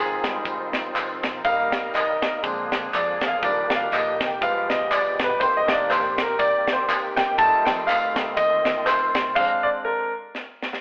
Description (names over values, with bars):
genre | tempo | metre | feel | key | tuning
uptempo gospel | 121 BPM | 4/4 | swing 56% on 8ths | unclear | A4 = 440 Hz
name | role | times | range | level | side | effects
clear baby grand piano | accompaniment | 0.0-10.1 s | Eb3 to A5 | -24 LUFS | equal | none
bright tonewheel organ | sustained chords | 0.0-9.3 s | D3 to Bb4 | -33 LUFS | equal | fast rotary speaker, chorus vibrato
dark French horn section | sustained chords | 0.0-9.3 s | Eb3 to Bb4 | -40 LUFS | equal | none
hollow-body short-scale fingered electric bass | bass | 0.0-9.3 s | G1 to F2 | -48 LUFS | equal | none
tight funk drum kit | drums | 0.2-10.8 s | crash cymbal, hi-hat, kick drum, snare drum | -29 LUFS | equal | none
tambourine and handclaps | percussion | 0.2-9.2 s | none | -32 LUFS | equal | none
room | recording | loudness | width
wet stone room reverb, RT60 1.3 s | band playing live in one room, telephone sound | -22 LUFS | mono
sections
0.0-10.8 A section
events
grand piano solo 0.0-10.8; stop 9.4-10.8; drum fill 10.3-10.8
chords
0.0 Fm7; 1.5 Eb; 2.4 Bb7; 3.4 Ebmaj7; 4.4 G7b9; 5.4 Cm7; 7.4 F7/C; 9.4 Bb9/Ab